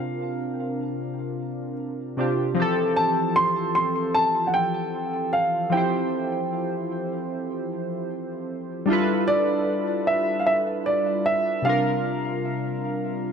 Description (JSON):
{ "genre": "R&B", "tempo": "76 BPM", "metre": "4/4", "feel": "swing 54% on 16ths", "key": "F major", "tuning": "A4 = 440 Hz", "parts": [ { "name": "dark concert grand piano", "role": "melody", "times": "0.0-13.3 s", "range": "D5 to C6", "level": "-24 LUFS", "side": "right 1 dB", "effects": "ping-pong delay" }, { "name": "warm analog keys", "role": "accompaniment", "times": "0.0-13.3 s", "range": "C3 to C5", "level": "-25 LUFS", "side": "equal", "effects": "chorus" } ], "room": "moderate lush hall reverb, RT60 2.4 s", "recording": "none", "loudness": "-22 LUFS", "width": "side -7 dB against mid", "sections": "0.0-13.3 A section", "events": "none", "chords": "0.0 C7sus4; 2.6 Fmaj9; 8.9 G13; 11.7 C7sus4" }